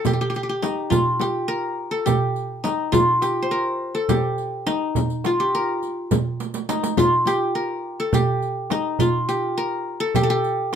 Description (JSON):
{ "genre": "Turkish makam ensemble", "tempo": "208 BPM (eighths)", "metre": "7/8", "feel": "straight", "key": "G makam nihavent", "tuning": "A4 = 441 Hz", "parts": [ { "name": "qanun", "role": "melody", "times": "0.0-10.8 s", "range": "Eb4 to C5", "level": "-21 LUFS", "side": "left 1 dB", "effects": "none" }, { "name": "frame drum", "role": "percussion", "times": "0.0-10.8 s", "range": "none", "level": "-25 LUFS", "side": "left 5 dB", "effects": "none" }, { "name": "darbuka", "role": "percussion", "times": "0.1-10.8 s", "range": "none", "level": "-25 LUFS", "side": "right 5 dB", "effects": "none" }, { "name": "riq", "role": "percussion", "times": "0.1-10.8 s", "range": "none", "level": "-31 LUFS", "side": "right 8 dB", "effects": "none" } ], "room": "light reverb", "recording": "minimal, uncompressed stereo recording", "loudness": "-20 LUFS", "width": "side -8 dB against mid", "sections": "0.0-10.8 A section", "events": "drum fill 6.4-7.0", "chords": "none" }